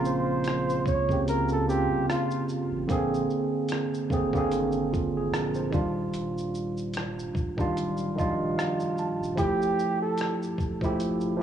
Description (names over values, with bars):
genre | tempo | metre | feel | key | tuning
lo-fi hip hop | 74 BPM | 4/4 | swing 57% on 16ths | unclear | A4 = 440 Hz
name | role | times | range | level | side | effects
mellow tine electric piano | accompaniment | 0.0-11.4 s | Db3 to A5 | -26 LUFS | right 2 dB | cassette tape, low-pass filter
saturated sub bass | bass | 0.0-11.4 s | D1 to Db2 | -37 LUFS | left 1 dB | none
mellow flugelhorn | melody | 0.1-2.4, 9.4-10.4 s | F4 to Db5 | -29 LUFS | right 1 dB | low-pass filter, cassette tape, tape echo
dusty soul sampler-style drum kit | drums | 0.1-11.4 s | hi-hat, kick drum, rim click, shaker | -33 LUFS | equal | cassette tape
room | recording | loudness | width
light reverb, digital ambience | home recording on cassette, small room ambience | -25 LUFS | side -9 dB against mid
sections
0.0-11.4 A section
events
none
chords
0.0 Bbmadd9; 2.9 Bb9; 5.7 Ebmaj9; 9.4 Fmaj9